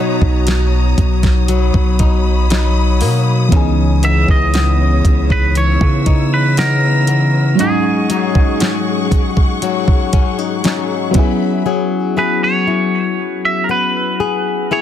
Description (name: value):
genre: contemporary R&B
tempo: 59 BPM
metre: 4/4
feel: straight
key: C# dorian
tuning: A4 = 442 Hz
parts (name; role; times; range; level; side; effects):
- twangy electric guitar; melody; 0.0-14.8 s; G#4 to E5; -19 LUFS; right 2 dB; tape echo
- mellow FM electric piano; accompaniment; 0.0-14.8 s; E3 to G#4; -20 LUFS; right 1 dB; chorus, phaser
- warm studio string section; sustained chords; 0.0-11.7 s; F#3 to E6; -25 LUFS; left 2 dB; none
- flamenco guitar; arpeggios; 0.0-14.8 s; G#2 to G#4; -19 LUFS; left 8 dB; tape echo
- long sustained 808-style bass; bass; 0.2-7.5 s; B1 to C#3; -14 LUFS; right 1 dB; none
- smooth R&B drum kit; drums; 0.2-11.4 s; hi-hat, kick drum, snare drum; -15 LUFS; equal; none
room: little or no reverb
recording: dense, heavily limited modern master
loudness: -12 LUFS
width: side -10 dB against mid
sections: 0.0-14.8 A section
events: none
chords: 0.0 Bmaj7; 3.5 C#m9; 7.6 G#7sus4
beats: 0.47 1.49 2.50 | 3.52 4.54 5.55 6.57 | 7.59 8.61 9.62 10.64 | 11.66 12.67 13.69 14.71